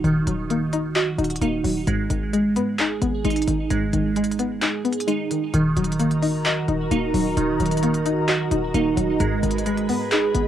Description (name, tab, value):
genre	hip hop, trap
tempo	131 BPM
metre	4/4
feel	half-time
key	Eb minor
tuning	A4 = 440 Hz
part	string-like resonator pluck	accompaniment	0.0-10.5 s	Ab2 to Eb5	-25 LUFS	left 6 dB	chorus, cassette tape
part	glassy digital keys	arpeggios	0.0-10.5 s	Eb3 to Ab4	-23 LUFS	right 4 dB	chorus, cassette tape, tape echo
part	short 808-style bass	bass	0.0-10.5 s	Eb1 to Ab2	-27 LUFS	equal	none
part	trap drum kit	drums	0.0-10.5 s	handclaps, hi-hat	-28 LUFS	left 1 dB	none
part	glassy FM pad	sustained chords	5.8-10.5 s	Gb4 to Cb6	-27 LUFS	left 1 dB	ensemble chorus, built-in reverb, cassette tape
room	moderate booth ambience, RT60 0.2 s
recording	home recording on cassette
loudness	-20 LUFS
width	side -10 dB against mid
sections	0.0-5.5 A section; 5.5-10.5 B section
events	kick muted 4.6-5.5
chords	0.0 Ebm; 1.9 Abm; 5.5 Ebm; 9.2 Abm